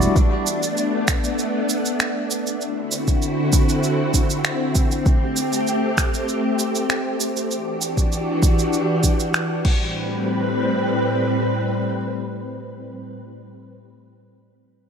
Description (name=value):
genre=sunset chillout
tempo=98 BPM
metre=4/4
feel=straight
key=A dorian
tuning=A4 = 440 Hz
part: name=soft string machine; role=sustained chords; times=0.0-13.2 s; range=A2 to B4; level=-21 LUFS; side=equal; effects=ensemble chorus
part: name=deep house drum kit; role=drums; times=0.0-9.8 s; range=cabasa, crash cymbal, finger snaps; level=-25 LUFS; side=right 2 dB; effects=none
part: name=electronic kick drum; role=drums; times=0.2-9.8 s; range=none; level=-19 LUFS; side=equal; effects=none
room=moderate concert hall reverb, RT60 2.1 s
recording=none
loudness=-18 LUFS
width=side -7 dB against mid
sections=0.0-10.0 A section; 10.0-12.4 B section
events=none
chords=0.2 Bm7; 2.6 D9; 4.8 Am7; 7.5 Em9; 9.7 Am9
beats=| 0.16 0.77 1.39 2.00 | 2.61 3.22 3.83 4.45 | 5.06 5.67 6.28 6.90 | 7.51 8.12 8.73 9.35 | 9.96 10.57 11.18 11.79